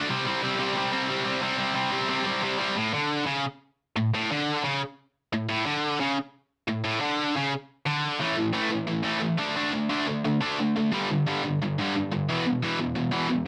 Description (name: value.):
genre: punk.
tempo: 177 BPM.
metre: 4/4.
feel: straight.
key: unclear.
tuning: A4 = 440 Hz.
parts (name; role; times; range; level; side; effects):
tight distorted guitar; solo; 0.0-13.4 s; E2 to D4; -27 LUFS; equal; distortion.
room: light reverb.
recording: none.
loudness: -27 LUFS.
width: mono.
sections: 0.0-2.8 A section; 2.8-8.2 B section; 8.2-13.5 C section.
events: none.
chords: 0.1 C5; 2.8 A; 8.2 A5; 9.4 D5; 10.9 G5; 12.3 E5.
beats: | 0.09 0.42 0.76 1.10 | 1.43 1.77 2.11 2.44 | 2.78 3.12 3.46 3.79 | 4.13 4.47 4.81 5.15 | 5.49 5.83 6.16 6.50 | 6.84 7.18 7.52 7.86 | 8.20 8.54 8.88 9.22 | 9.56 9.90 10.24 10.58 | 10.92 11.26 11.60 11.94 | 12.28 12.62 12.96 13.29.